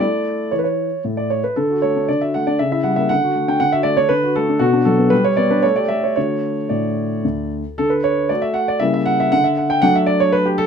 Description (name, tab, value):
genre	classical-period piano sonatina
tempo	117 BPM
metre	3/4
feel	rubato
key	D major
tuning	A4 = 440 Hz
part	warm concert grand piano	solo	0.0-10.7 s	D2 to G5	-15 LUFS	equal	none
room	light reverb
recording	none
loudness	-15 LUFS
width	side -7 dB against mid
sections	0.0-7.8 A section; 7.8-10.7 B section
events	none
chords	0.0 A5; 1.6 D; 2.6 C#dim7; 3.1 D; 4.6 Bm; 5.1 G; 5.6 A7; 6.2 D; 8.8 C#dim7; 9.3 D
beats	0.51 1.03 | 1.56 2.08 2.59 | 3.09 3.60 4.11 | 4.61 5.11 5.63 | 6.16 6.70 7.24 | 7.78 8.30 8.81 | 9.32 9.83 10.34